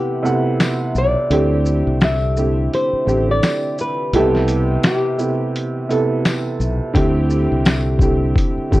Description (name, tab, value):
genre	lo-fi hip hop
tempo	85 BPM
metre	4/4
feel	swing 60% on 16ths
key	A dorian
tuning	A4 = 436 Hz
part	flamenco guitar	melody	0.0-6.6 s	G4 to E5	-22 LUFS	left 1 dB	low-pass filter, tape echo
part	warm upright piano	accompaniment	0.0-8.8 s	B2 to F#5	-19 LUFS	right 2 dB	cassette tape, low-pass filter
part	lo-fi sampler-style drum kit	drums	0.3-8.8 s	finger snaps, hi-hat, kick drum, shaker, snare drum	-18 LUFS	left 1 dB	overdrive, vintage 12-bit sampler grit
part	tambourine	percussion	0.6-7.9 s	none	-37 LUFS	left 5 dB	none
part	fingered electric bass	bass	1.0-8.8 s	A1 to D2	-19 LUFS	left 1 dB	none
room	light reverb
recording	worn, warbling old tape, cassette tape, warbly pitch drift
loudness	-15 LUFS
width	side -17 dB against mid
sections	0.0-8.8 A section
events	break 0.0-7.0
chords	0.0 Am7/C; 1.3 D9sus4; 4.1 Am7/C; 7.0 D9sus4